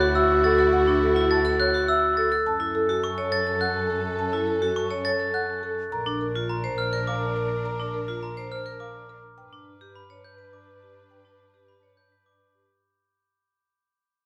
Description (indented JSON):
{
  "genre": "classical, minimalist pattern music",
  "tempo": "104 BPM",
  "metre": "3/4",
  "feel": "straight",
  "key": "unclear",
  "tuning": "A4 = 441 Hz",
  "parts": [
    { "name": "marimba with soft mallets", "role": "melody", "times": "0.0-12.7 s", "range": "G4 to C#6", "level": "-32 LUFS", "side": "equal", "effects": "none" },
    { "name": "mellow hollow alto flute", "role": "second line", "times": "0.0-12.7 s", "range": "F#4 to B4", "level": "-29 LUFS", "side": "equal", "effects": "none" },
    { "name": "warm studio string section", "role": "sustained chords", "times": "0.0-12.7 s", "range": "C#4 to B4", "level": "-38 LUFS", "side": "equal", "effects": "none" },
    { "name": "glockenspiel with hard plastic mallets", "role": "arpeggios", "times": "0.0-12.4 s", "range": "Bb5 to A6", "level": "-29 LUFS", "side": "equal", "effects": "none" },
    { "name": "vibraphone with hard mallets", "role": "arpeggios", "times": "0.0-12.3 s", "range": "D4 to C#5", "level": "-34 LUFS", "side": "equal", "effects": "none" },
    { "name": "dark double bass", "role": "bass", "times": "0.0-12.7 s", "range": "Bb1 to G2", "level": "-34 LUFS", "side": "equal", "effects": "none" }
  ],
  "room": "light reverb",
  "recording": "none",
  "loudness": "-24 LUFS",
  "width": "mono",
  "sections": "0.0-12.8 A section",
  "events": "fade-out 0.0-12.8",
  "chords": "0.0 Dadd9; 2.5 F#m; 5.9 Bb; 9.4 G"
}